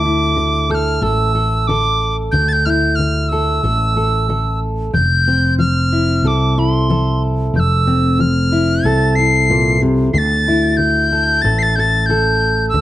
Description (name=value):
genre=acoustic folk duo or small band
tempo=92 BPM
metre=4/4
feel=straight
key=F major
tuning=A4 = 438 Hz
part: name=reedy tin whistle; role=melody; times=0.0-12.8 s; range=C6 to C7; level=-17 LUFS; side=equal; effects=none
part: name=fingerpicked steel-string acoustic guitar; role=accompaniment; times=0.0-12.8 s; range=F2 to A4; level=-18 LUFS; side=left 1 dB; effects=none
part: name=fretless electric bass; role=bass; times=0.0-12.8 s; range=F1 to D2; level=-17 LUFS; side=right 1 dB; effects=none
room=moderate studio ambience, RT60 0.5 s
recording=nothing above 10.5 kHz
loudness=-13 LUFS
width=side -14 dB against mid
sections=0.0-4.9 A section; 4.9-12.8 A section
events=none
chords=0.0 Dsus2; 4.9 Fmaj7; 10.1 Dsus2